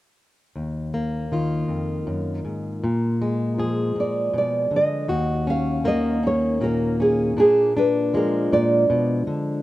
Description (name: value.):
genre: acoustic folk-pop ballad.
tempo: 53 BPM (dotted quarters).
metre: 6/8.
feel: straight.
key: Eb minor.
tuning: A4 = 437 Hz.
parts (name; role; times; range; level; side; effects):
fingerpicked plugged-in steel-string acoustic guitar; accompaniment; 0.6-9.6 s; Eb2 to Ab4; -22 LUFS; left 1 dB; none.
nylon-string guitar; melody; 4.0-9.3 s; Ab4 to F5; -21 LUFS; right 1 dB; none.
room: little or no reverb.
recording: recorded outdoors, with no room sound.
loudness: -20 LUFS.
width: side -16 dB against mid.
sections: 0.6-5.1 A section; 5.1-9.6 B section.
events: none.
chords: 0.6 Ebm; 2.8 Bb7; 5.1 Ebm7; 7.4 Bb7.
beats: | 0.56 1.70 | 2.83 3.96 | 5.10 6.24 | 7.38 8.52.